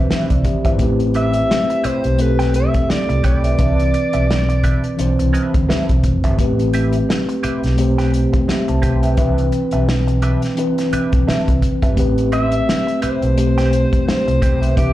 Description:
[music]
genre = lush 1970s-style soul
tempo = 86 BPM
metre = 4/4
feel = swing 58% on 16ths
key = unclear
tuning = A4 = 441 Hz
[part]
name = mellow tine electric piano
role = accompaniment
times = 0.0-14.9 s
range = Eb3 to A5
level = -20 LUFS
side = equal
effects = medium stereo tremolo, slapback echo
[part]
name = direct-recorded clean electric guitar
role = riff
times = 0.0-14.9 s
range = C4 to G5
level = -28 LUFS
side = right 2 dB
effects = wah, slapback echo
[part]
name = overdriven fingered electric bass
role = bass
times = 0.0-14.9 s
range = F1 to D2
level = -17 LUFS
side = equal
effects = none
[part]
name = warm soul drum kit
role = drums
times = 0.1-14.9 s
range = hi-hat, kick drum, snare drum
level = -20 LUFS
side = equal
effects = none
[part]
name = warm alto saxophone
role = melody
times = 1.2-5.3, 12.3-14.9 s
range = G4 to E5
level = -21 LUFS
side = equal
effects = slapback echo
[sound]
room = small room ambience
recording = live gig heard through the venue's PA, club reverb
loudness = -14 LUFS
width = side -14 dB against mid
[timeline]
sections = 0.0-14.9 A section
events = none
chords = 0.0 Cmaj9; 0.8 Am9; 3.6 Cmaj9; 6.4 Am9; 9.2 Cmaj9; 12.0 Am9

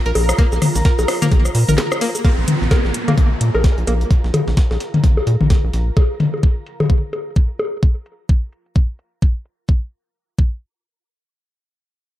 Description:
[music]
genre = minimal techno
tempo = 129 BPM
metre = 4/4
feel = swing 59% on 16ths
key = unclear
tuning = A4 = 440 Hz
[part]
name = granular cloud pad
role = texture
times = 0.0-6.0 s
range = F4 to Bb5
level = -29 LUFS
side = right 2 dB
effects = built-in reverb, sidechain pumping
[part]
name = string-like resonator pluck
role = riff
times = 0.1-3.9 s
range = Bb3 to Bb4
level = -26 LUFS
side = right 1 dB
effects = chorus, sidechain pumping, tape echo
[part]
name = rubbery square bass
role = bass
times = 0.1-5.9 s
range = Bb1 to Bb2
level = -18 LUFS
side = equal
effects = sidechain pumping
[part]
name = breakbeat sampler-style drum kit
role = drums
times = 0.1-5.9 s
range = hi-hat, snare drum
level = -34 LUFS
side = right 1 dB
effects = high-pass filter on hats, high-pass filter on snare, dub echo
[part]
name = garage drum kit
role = drums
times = 0.2-9.6 s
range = hi-hat, shaker, snare drum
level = -26 LUFS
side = right 1 dB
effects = low-pass filter on hats, low-pass filter on perc, low-pass filter on snare, dub echo
[part]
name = booming analog drum machine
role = percussion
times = 0.2-7.7 s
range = bongos, rim click, toms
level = -20 LUFS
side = left 2 dB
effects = tape echo
[part]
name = electronic kick drum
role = drums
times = 0.4-10.5 s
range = none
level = -14 LUFS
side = equal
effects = none
[part]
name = downlifter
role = sound effects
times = 2.2-6.0 s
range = none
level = -28 LUFS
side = right 2 dB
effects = none
[sound]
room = digital ambience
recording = echo-heavy mix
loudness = -15 LUFS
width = side -14 dB against mid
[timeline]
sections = 0.0-2.2 A section; 2.2-9.7 B section; 9.7-12.2 C section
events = drop 0.0-2.2; break 1.8-2.2; filter sweep on drum 2.2-9.7; filter sweep on synth pluck 2.2-4.1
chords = 0.0 Bb5; 9.7 N.C.

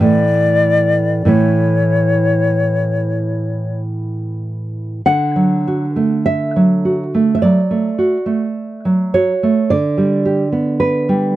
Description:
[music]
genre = romantic duo for flute and classical guitar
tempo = 46-55 BPM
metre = 4/4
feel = rubato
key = D major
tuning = A4 = 440 Hz
[part]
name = mellow silver concert flute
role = melody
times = 0.0-3.8 s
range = C#5 to D5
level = -17 LUFS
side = left 4 dB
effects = none
[part]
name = nylon-string guitar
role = accompaniment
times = 0.0-11.4 s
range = A2 to F#5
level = -14 LUFS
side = right 2 dB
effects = none
[sound]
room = light reverb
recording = dry, close 1970s-style studio recording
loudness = -13 LUFS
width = side -14 dB against mid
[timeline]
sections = 0.0-5.1 A section; 5.1-11.4 B section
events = none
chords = 0.0 A; 5.1 D; 9.7 G/D

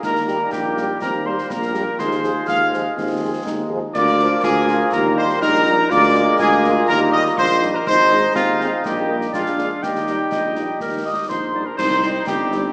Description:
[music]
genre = military-style march for wind band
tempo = 123 BPM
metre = 2/4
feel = straight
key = Eb major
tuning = A4 = 440 Hz
[part]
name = dark trumpet section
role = melody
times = 0.0-12.7 s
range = F4 to F5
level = -23 LUFS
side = equal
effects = none
[part]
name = mellow euphonium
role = second line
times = 0.0-12.7 s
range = Ab3 to F4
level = -28 LUFS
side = equal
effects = none
[part]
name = mellow woodwind section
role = second line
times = 0.0-12.7 s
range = C4 to Eb5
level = -30 LUFS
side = equal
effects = none
[part]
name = wooden piccolo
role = second line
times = 0.0-12.7 s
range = F5 to F6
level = -26 LUFS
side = equal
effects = none
[part]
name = mellow tuba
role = bass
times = 0.0-12.7 s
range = G1 to Eb2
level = -27 LUFS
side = equal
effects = none
[part]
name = concert snare drum, clash cymbals and concert bass drum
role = drums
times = 0.0-12.6 s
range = none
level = -36 LUFS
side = equal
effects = none
[part]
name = warm trombone section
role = sustained chords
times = 0.1-12.7 s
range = F3 to Eb4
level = -28 LUFS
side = equal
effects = none
[part]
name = mellow French horn section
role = accompaniment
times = 0.3-12.6 s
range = F3 to Ab4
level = -33 LUFS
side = equal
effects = none
[sound]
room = wet scoring stage reverb, RT60 1.6 s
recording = small speaker sound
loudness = -19 LUFS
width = mono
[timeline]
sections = 0.0-11.8 A section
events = none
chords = 0.0 Eb; 2.0 Fm7/Eb; 4.0 Bb/D; 4.9 Eb; 5.9 Bb7/D; 6.9 Eb; 7.9 Ab; 8.8 Eb/Bb; 9.3 Bb7; 9.8 Eb; 11.8 Cm

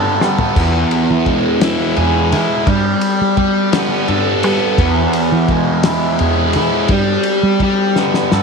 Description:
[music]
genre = psychedelic rock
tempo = 57 BPM (dotted quarters)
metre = 6/8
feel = straight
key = unclear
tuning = A4 = 441 Hz
[part]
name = fuzz guitar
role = riff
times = 0.0-8.4 s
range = E2 to A4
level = -14 LUFS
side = right 1 dB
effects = distortion, phaser
[part]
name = fingered electric bass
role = bass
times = 0.0-8.4 s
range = E2 to G3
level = -18 LUFS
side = right 1 dB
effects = none
[part]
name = cloth-damped thuddy drum kit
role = drums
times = 0.2-8.4 s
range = crash cymbal, kick drum, ride cymbal, snare drum, toms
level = -20 LUFS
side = left 3 dB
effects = none
[sound]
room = light reverb, small room ambience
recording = 1960s-style stereo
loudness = -12 LUFS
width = side -5 dB against mid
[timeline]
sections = 0.0-8.4 A section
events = drum fill 0.2-0.6, 8.0-8.4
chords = 0.0 Gadd9; 0.6 E; 2.7 Gadd9; 4.8 E; 6.9 G

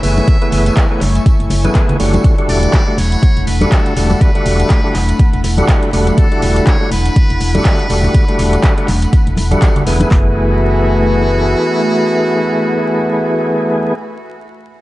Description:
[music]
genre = deep house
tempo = 122 BPM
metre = 4/4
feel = swing 57% on 16ths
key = F# minor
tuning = A4 = 439 Hz
[part]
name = trumpet with metal mute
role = melody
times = 0.0-13.9 s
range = F#4 to E5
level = -25 LUFS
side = equal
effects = tape echo
[part]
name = airy breathy pad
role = sustained chords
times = 0.0-13.9 s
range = A3 to C#6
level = -24 LUFS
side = equal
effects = chorus, sidechain pumping
[part]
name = percussive tonewheel organ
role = stabs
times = 0.0-14.0 s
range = D3 to G#4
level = -16 LUFS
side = equal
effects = overdrive, fast rotary speaker, vintage 12-bit sampler grit, sidechain pumping
[part]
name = organ-like FM bass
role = bass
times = 0.0-11.5 s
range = E1 to F#1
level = -15 LUFS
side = equal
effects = sidechain pumping
[part]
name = deep house drum kit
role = drums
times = 0.0-10.1 s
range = handclaps, hi-hat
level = -24 LUFS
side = equal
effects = overdrive
[part]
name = tambourine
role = percussion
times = 0.0-10.1 s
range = none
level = -32 LUFS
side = right 1 dB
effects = none
[part]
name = warbly tape-like pad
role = texture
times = 0.0-14.1 s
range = A3 to E5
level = -24 LUFS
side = left 2 dB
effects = chorus, built-in reverb, sidechain pumping
[part]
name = congas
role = percussion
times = 0.2-10.1 s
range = none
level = -20 LUFS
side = left 1 dB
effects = sidechain pumping on perc
[part]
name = deep house drum kit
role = drums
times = 0.3-10.2 s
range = handclaps, kick drum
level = -12 LUFS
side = equal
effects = none
[sound]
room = light reverb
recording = dark, warm production, vinyl crackle, nothing above 10.3 kHz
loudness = -10 LUFS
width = side -17 dB against mid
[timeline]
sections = 0.0-10.1 A section; 10.1-14.0 B section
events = drop 0.0-10.1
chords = 0.0 F#m11; 2.2 Em11; 10.1 F#m11

